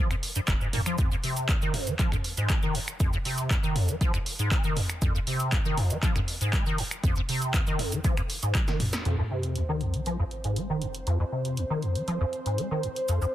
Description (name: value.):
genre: acid house.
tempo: 119 BPM.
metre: 4/4.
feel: straight.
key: F minor.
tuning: A4 = 439 Hz.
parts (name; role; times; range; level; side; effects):
liquid acid bass; riff; 0.0-13.3 s; F1 to Ab3; -28 LUFS; equal; tube saturation, ensemble chorus, sidechain pumping, ping-pong delay.
punchy analog drum machine; drums; 0.1-13.2 s; finger snaps, handclaps, hi-hat, snare drum, toms; -32 LUFS; equal; none.
maracas; percussion; 0.1-9.0, 13.1-13.3 s; none; -39 LUFS; right 4 dB; none.
electronic kick drum; drums; 0.5-8.7 s; none; -27 LUFS; equal; none.
warm analog pad; sustained chords; 9.1-13.3 s; C5; -34 LUFS; right 1 dB; chorus, sidechain pumping.
sub drop and riser; sound effects; 9.1-13.3 s; none; -34 LUFS; equal; none.
room: light reverb, digital ambience.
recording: dense, heavily limited modern master.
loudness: -25 LUFS.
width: side -13 dB against mid.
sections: 0.0-9.1 A section; 9.1-13.3 B section.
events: drop 0.0-9.1; drum fill 8.7-9.1; band accent 8.9; impact 9.1-11.1.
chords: 0.0 Fm; 9.1 F5.